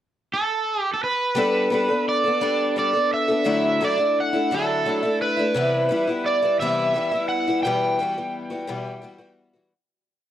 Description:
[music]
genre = rock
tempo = 57 BPM (dotted quarters)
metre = 6/8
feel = straight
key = G major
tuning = A4 = 440 Hz
[part]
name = overdriven slide guitar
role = melody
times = 0.3-9.3 s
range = A4 to G5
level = -22 LUFS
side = right 2 dB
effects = slapback echo
[part]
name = picked twelve-string acoustic guitar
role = accompaniment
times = 1.3-9.7 s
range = E2 to A4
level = -23 LUFS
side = left 2 dB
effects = none
[sound]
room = little or no reverb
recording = dry, close 1970s-style studio recording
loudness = -20 LUFS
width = side -11 dB against mid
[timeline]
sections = 0.0-1.3 pickup bar; 1.3-9.7 verse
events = fade-out 7.6-9.7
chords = 0.0 N.C.; 1.3 Gadd9; 3.4 Dadd9; 5.5 Cmaj7; 7.6 Emadd9

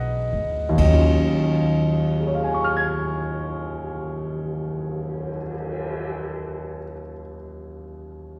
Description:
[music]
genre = jazz ballad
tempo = 44 BPM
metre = 4/4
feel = swing 68% on 8ths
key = Eb minor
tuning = A4 = 440 Hz
[part]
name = warm grand piano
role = accompaniment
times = 0.0-8.4 s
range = Eb2 to Ab6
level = -26 LUFS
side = equal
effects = slapback echo
[part]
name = upright bass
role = bass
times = 0.0-5.3 s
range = Cb2 to Eb2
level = -27 LUFS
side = equal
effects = none
[part]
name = jazz brush drum kit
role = drums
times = 0.8-6.0 s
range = cymbal swell, kick drum, ride cymbal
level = -37 LUFS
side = equal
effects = none
[sound]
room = moderate club reverb, RT60 0.6 s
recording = live gig heard through the venue's PA, recital hall reverb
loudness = -23 LUFS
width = mono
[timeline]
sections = 0.8-6.3 A section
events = none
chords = 0.0 Abm7; 0.8 Ebm7

